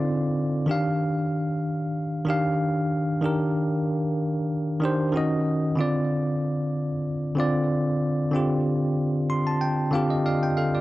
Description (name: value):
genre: R&B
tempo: 94 BPM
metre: 4/4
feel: swing 53% on 16ths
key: D phrygian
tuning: A4 = 440 Hz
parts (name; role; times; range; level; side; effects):
- bell-like tine electric piano; solo; 0.0-10.8 s; D3 to C6; -22 LUFS; equal; medium stereo tremolo
room: light reverb, digital ambience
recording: dry, close 1970s-style studio recording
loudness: -22 LUFS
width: side -17 dB against mid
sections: 0.0-10.8 A section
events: tine electric piano fill 9.0-10.8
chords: 0.0 Dm7; 0.7 Ebmaj9; 5.1 Ebm7; 5.8 Dm7